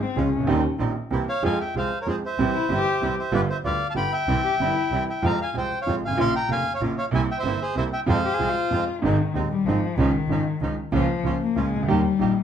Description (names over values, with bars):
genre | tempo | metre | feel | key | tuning
tango | 190 BPM | 3/4 | rubato | F harmonic minor, Ab major from 9.0 s | A4 = 435 Hz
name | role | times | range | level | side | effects
dark cello | second line | 0.0-0.5, 2.5-5.0, 8.3-12.4 s | Eb3 to Ab4 | -25 LUFS | left 6 dB | none
clear baby grand piano | accompaniment | 0.2-12.3 s | Eb1 to Ab4 | -26 LUFS | right 3 dB | none
bandoneon | stabs | 0.2-12.3 s | F3 to G4 | -33 LUFS | right 4 dB | none
rich double bass | bass | 0.2-12.3 s | F1 to F2 | -28 LUFS | right 1 dB | none
bandoneon | melody | 1.3-8.8 s | Ab4 to C6 | -26 LUFS | equal | none
room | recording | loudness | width
moderate large studio reverb, RT60 1.1 s | minimal, uncompressed stereo recording | -21 LUFS | side -8 dB against mid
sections
0.0-1.4 A section; 1.4-9.0 B section; 9.0-12.4 A section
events
cello solo 0.0-1.4, 9.0-12.4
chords
0.5 Eb6; 1.1 C7; 1.4 Fm; 2.4 C; 3.3 G7; 4.3 C; 5.2 Fm; 6.2 Bbm; 7.1 C7; 8.1 Fm; 9.0 Ab; 10.0 Dbadd9; 10.9 Bbm/Db; 11.9 Eb